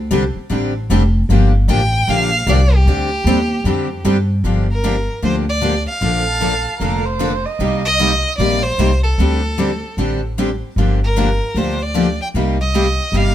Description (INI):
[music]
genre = acoustic string swing (jazz manouche)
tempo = 152 BPM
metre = 4/4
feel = swing 63% on 8ths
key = G minor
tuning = A4 = 440 Hz
[part]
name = upright bass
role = bass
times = 0.0-13.3 s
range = F1 to G2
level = -17 LUFS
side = equal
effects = none
[part]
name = picked steel-string acoustic guitar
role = accompaniment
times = 0.1-13.3 s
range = C3 to A4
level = -21 LUFS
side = left 5 dB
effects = none
[part]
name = picked steel-string acoustic guitar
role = accompaniment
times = 0.1-13.3 s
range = C3 to A4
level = -24 LUFS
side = right 5 dB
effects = none
[part]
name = clear violin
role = melody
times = 1.7-13.3 s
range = G4 to G5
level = -20 LUFS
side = right 1 dB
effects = none
[part]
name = dark erhu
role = second line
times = 6.3-8.2 s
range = A4 to Eb5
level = -24 LUFS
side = right 5 dB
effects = none
[sound]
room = light reverb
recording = minimal, uncompressed stereo recording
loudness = -14 LUFS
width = side -11 dB against mid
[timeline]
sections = 0.0-4.4 A section; 4.4-13.3 B section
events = none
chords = 0.0 D7sus4; 1.3 Gm9; 2.9 D7sus4; 4.4 Gm7; 6.0 Bbmaj7; 7.6 Cm7; 9.2 D7sus4; 10.8 Gm7; 12.3 Cm7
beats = 0.11 0.50 0.90 | 1.29 1.68 2.08 2.47 | 2.86 3.26 3.65 4.04 | 4.44 4.83 5.23 5.62 | 6.02 6.41 6.81 7.20 | 7.60 7.99 8.39 8.79 | 9.18 9.58 9.97 10.37 | 10.77 11.16 11.56 11.95 | 12.35 12.74 13.14